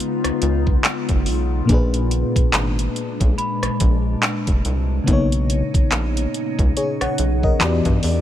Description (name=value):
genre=contemporary R&B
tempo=71 BPM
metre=4/4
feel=swing 58% on 16ths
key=unclear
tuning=A4 = 441 Hz
part: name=FM electric piano with tremolo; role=accompaniment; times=0.0-8.2 s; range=Bb2 to F#5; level=-23 LUFS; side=left 3 dB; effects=none
part: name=glassy FM pad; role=sustained chords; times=0.0-8.2 s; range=Bb2 to F4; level=-26 LUFS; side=left 1 dB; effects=ensemble chorus, built-in reverb, sidechain pumping
part: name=smooth R&B drum kit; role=drums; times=0.0-8.2 s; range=handclaps, hi-hat, kick drum, rim click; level=-19 LUFS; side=equal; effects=none
part: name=rubbery square bass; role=bass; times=0.2-8.2 s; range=F1 to G2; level=-21 LUFS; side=equal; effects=none
part: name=worn celesta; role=texture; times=3.4-5.5 s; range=Cb6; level=-30 LUFS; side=right 1 dB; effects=tape echo
room=little or no reverb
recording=none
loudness=-17 LUFS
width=side -11 dB against mid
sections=0.0-8.2 A section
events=none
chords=0.0 Db9; 1.7 Bb7b9; 5.1 Bmaj9; 7.6 Em7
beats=0.00 0.85 | 1.69 2.54 3.38 4.23 | 5.07 5.92 6.76 7.61